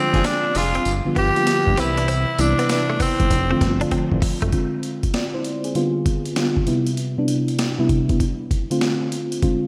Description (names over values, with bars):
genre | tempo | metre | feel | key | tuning
R&B, new jack swing | 98 BPM | 4/4 | swing 66% on 16ths | unclear | A4 = 439 Hz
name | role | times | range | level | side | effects
raspy tenor saxophone | melody | 0.0-3.9 s | C4 to G4 | -24 LUFS | equal | slapback echo
mellow FM electric piano | accompaniment | 0.0-9.7 s | C3 to D5 | -24 LUFS | equal | chorus, slapback echo
direct-recorded clean electric guitar | riff | 0.0-4.5 s | A3 to D4 | -33 LUFS | equal | analog chorus, slapback echo
clear studio string section | stabs | 0.1-2.7 s | B3 to B4 | -33 LUFS | equal | slapback echo, tape echo
fat analog bass | bass | 0.1-4.5 s | F1 to G2 | -26 LUFS | equal | none
boom bap sampler-style drum kit | drums | 0.1-9.6 s | hi-hat, kick drum, snare drum, tambourine | -26 LUFS | equal | none
room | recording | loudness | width
moderate lush hall reverb, RT60 2.1 s | big arena sound | -21 LUFS | mono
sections
0.0-4.5 A section; 4.5-9.7 B section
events
drum fill 3.9-4.5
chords
0.0 Fm6; 0.9 G7; 1.8 Cmaj7; 3.3 F6; 4.5 Fm6; 5.8 G7; 6.7 Cmaj7; 8.2 F6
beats
0.24 0.85 1.47 | 2.08 2.69 3.30 3.92 | 4.53 5.14 5.75 6.37 | 6.98 7.59 8.20 8.81 | 9.43